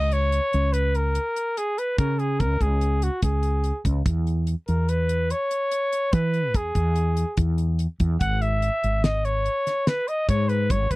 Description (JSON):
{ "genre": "progressive instrumental, band music in an uneven meter", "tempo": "145 BPM", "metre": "5/4", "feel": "straight", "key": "unclear", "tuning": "A4 = 440 Hz", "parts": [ { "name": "warm trumpet", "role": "melody", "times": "0.0-11.0 s", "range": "F#4 to F#5", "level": "-25 LUFS", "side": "equal", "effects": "none" }, { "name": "woody fretless electric bass", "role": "bass", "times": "0.0-11.0 s", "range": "G#1 to E3", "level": "-22 LUFS", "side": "equal", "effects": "wide subtle chorus" }, { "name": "damped 70s drum kit", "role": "drums", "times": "0.1-11.0 s", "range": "hi-hat, kick drum, snare drum", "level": "-26 LUFS", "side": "equal", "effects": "none" } ], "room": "little or no reverb", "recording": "dry, close 1970s-style studio recording", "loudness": "-21 LUFS", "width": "side -20 dB against mid", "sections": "0.0-11.0 A section", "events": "none", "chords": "0.0 C#5; 4.1 E5; 8.2 N.C." }